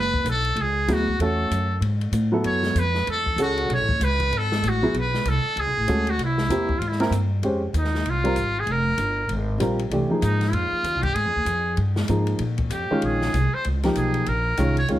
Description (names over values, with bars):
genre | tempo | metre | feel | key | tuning
modal jazz | 193 BPM | 4/4 | swing 61% on 8ths | B dorian, F minor from 7.4 s | A4 = 440 Hz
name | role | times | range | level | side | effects
trumpet with metal mute | melody | 0.0-14.9 s | C#4 to C#5 | -25 LUFS | equal | none
upright bass | bass | 0.0-15.0 s | F1 to Bb2 | -24 LUFS | equal | none
open jazz drum kit | drums | 0.1-15.0 s | hi-hat, kick drum, ride cymbal, snare drum | -32 LUFS | left 1 dB | none
warm baby grand piano | accompaniment | 0.9-15.0 s | Eb3 to C5 | -24 LUFS | equal | none
room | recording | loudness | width
light reverb | heavily compressed radio sound | -20 LUFS | side -13 dB against mid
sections
0.0-7.4 A section; 7.4-15.0 B section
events
none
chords
0.0 B13sus4; 6.2 C7; 7.4 Fm9; 12.4 Bbm9